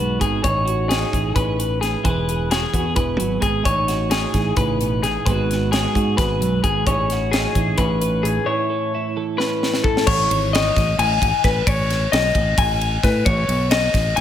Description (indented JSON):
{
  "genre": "math rock and midwest emo",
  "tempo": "262 BPM (eighths)",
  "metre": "7/8",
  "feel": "straight",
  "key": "A lydian",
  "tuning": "A4 = 439 Hz",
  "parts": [
    { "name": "twelve-string electric guitar", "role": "accompaniment", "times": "0.0-11.7 s", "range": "F#2 to B4", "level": "-25 LUFS", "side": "right 6 dB", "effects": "none" },
    { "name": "electric guitar through a small old amp", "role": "arpeggios", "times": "0.0-14.2 s", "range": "G#4 to G#5", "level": "-21 LUFS", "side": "left 4 dB", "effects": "none" },
    { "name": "fingered electric bass", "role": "bass", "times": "0.0-14.2 s", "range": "E1 to A2", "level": "-23 LUFS", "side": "equal", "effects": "none" },
    { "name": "crisp fusion drum kit", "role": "drums", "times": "0.2-14.2 s", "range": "crash cymbal, hi-hat, kick drum, ride cymbal, snare drum", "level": "-22 LUFS", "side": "equal", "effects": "none" }
  ],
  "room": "moderate plate reverb, RT60 1.9 s, small room reverb",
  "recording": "dreamy mix soaked in reverb",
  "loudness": "-17 LUFS",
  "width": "side -10 dB against mid",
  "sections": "0.0-10.1 A section; 10.1-14.2 B section",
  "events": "drum fill 9.4-10.1",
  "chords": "0.4 Amaj9#11; 2.0 E; 3.7 Amaj9#11; 5.3 G#m7; 6.9 Amaj9#11; 8.5 A; 10.1 C#m9; 13.3 Aadd9(#11)"
}